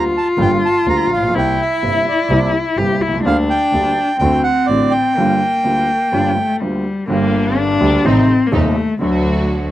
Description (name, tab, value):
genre	tango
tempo	125 BPM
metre	4/4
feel	rubato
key	G minor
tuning	A4 = 439 Hz
part	bandoneon	melody	0.0-6.6 s	D5 to Bb5	-18 LUFS	right 2 dB	slapback echo
part	warm cello	second line	0.0-9.7 s	F#3 to G4	-17 LUFS	left 3 dB	slapback echo
part	warm grand piano	accompaniment	0.0-9.7 s	Eb1 to G4	-19 LUFS	right 1 dB	none
part	dark double bass	bass	0.0-9.7 s	G1 to Eb2	-21 LUFS	right 1 dB	none
part	clear studio string section	stabs	7.1-9.7 s	G3 to F#4	-24 LUFS	right 3 dB	slapback echo
room	little or no reverb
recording	recorded outdoors, with no room sound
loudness	-13 LUFS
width	side -14 dB against mid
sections	0.0-7.1 A section; 7.1-9.7 B section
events	cello solo 7.1-9.7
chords	0.0 Gm7; 1.3 C7; 3.3 Gm/D; 4.2 D7; 5.2 Gm7; 7.1 Gm; 8.1 Adim; 9.0 D